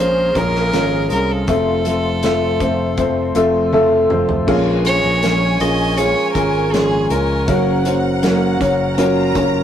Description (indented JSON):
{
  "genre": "pop ballad",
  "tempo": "80 BPM",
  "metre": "4/4",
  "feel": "straight",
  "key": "Bb minor",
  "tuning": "A4 = 440 Hz",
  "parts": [
    { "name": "warm violin", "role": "melody", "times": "0.0-7.8 s", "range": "Ab4 to Eb5", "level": "-20 LUFS", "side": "right 1 dB", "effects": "none" },
    { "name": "dark upright piano", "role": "accompaniment", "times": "0.0-9.6 s", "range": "Bb2 to A5", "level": "-17 LUFS", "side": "left 1 dB", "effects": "none" },
    { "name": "sweeping resonant pad", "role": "sustained chords", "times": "0.0-9.6 s", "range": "Db4 to Db6", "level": "-29 LUFS", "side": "right 1 dB", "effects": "chorus" },
    { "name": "fingerpicked steel-string acoustic guitar", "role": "arpeggios", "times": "0.0-9.6 s", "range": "F2 to F4", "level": "-25 LUFS", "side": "right 4 dB", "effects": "none" },
    { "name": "modern bright fingered electric bass", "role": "bass", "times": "0.0-9.6 s", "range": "F1 to Db2", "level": "-22 LUFS", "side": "equal", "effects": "none" },
    { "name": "loose indie drum kit", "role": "drums", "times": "0.4-9.5 s", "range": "crash cymbal, hi-hat, kick drum, snare drum, toms", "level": "-25 LUFS", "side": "equal", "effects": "none" },
    { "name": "warm studio violin section", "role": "second line", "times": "4.5-9.6 s", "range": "Gb5 to Bb5", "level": "-25 LUFS", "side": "left 2 dB", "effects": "none" }
  ],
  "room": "light reverb",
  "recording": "rough rehearsal-room recording",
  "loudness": "-14 LUFS",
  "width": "side -9 dB against mid",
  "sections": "0.0-4.5 A section; 4.5-9.6 B section",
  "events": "upright piano fill 3.4-4.5; drum fill 3.7-4.5",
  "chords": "0.0 Bbm7; 1.5 F; 4.5 Bbm7; 7.5 Gbmaj7"
}